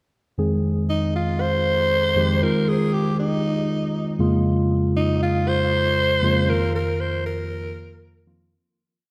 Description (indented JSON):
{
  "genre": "pop",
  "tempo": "118 BPM",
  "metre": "4/4",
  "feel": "straight",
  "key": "unclear",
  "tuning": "A4 = 439 Hz",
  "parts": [
    { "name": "mellow tine electric piano", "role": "accompaniment", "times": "0.4-8.5 s", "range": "F2 to Ab4", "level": "-23 LUFS", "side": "equal", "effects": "subtle chorus" },
    { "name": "raspy alto saxophone", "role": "melody", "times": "0.9-8.2 s", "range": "Eb4 to C5", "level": "-25 LUFS", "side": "equal", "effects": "delay" }
  ],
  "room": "wet lush hall reverb, RT60 2.7 s",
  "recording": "dreamy mix soaked in reverb",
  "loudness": "-21 LUFS",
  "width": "mono",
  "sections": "0.4-8.5 chorus",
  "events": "fade-out 6.5-8.5",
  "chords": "0.4 Ab/F; 2.4 Fm7; 4.2 Bbm7/F; 6.5 Ebsus2/F"
}